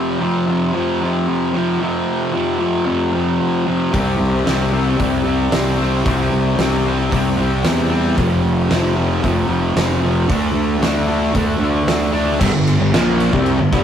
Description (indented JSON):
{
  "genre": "garage rock duo or trio",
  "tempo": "113 BPM",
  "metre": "4/4",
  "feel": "straight",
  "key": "unclear",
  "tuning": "A4 = 440 Hz",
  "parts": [
    { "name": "fuzz guitar", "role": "riff", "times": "0.0-13.8 s", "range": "F2 to D4", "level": "-17 LUFS", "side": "equal", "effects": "distortion" },
    { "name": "fuzz fingered electric bass", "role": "bass", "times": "3.9-13.8 s", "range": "F1 to E2", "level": "-19 LUFS", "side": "equal", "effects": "overdrive" },
    { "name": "oversized low-tuned drum kit", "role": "drums", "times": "3.9-13.8 s", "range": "crash cymbal, hi-hat, kick drum, ride cymbal, snare drum", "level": "-21 LUFS", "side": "equal", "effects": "none" }
  ],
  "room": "light reverb",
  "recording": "rough rehearsal-room recording",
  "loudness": "-15 LUFS",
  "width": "side -9 dB against mid",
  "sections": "0.0-12.4 A section; 12.4-13.8 B section",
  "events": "none",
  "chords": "0.0 F5; 3.9 C5; 8.2 F5; 10.3 D5; 12.4 G5",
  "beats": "0.21 0.74 1.27 | 1.80 2.33 2.87 3.40 | 3.93 4.46 4.99 5.52 | 6.05 6.59 7.12 7.65 | 8.18 8.71 9.24 9.77 | 10.30 10.82 11.35 11.88 | 12.41 12.93 13.46"
}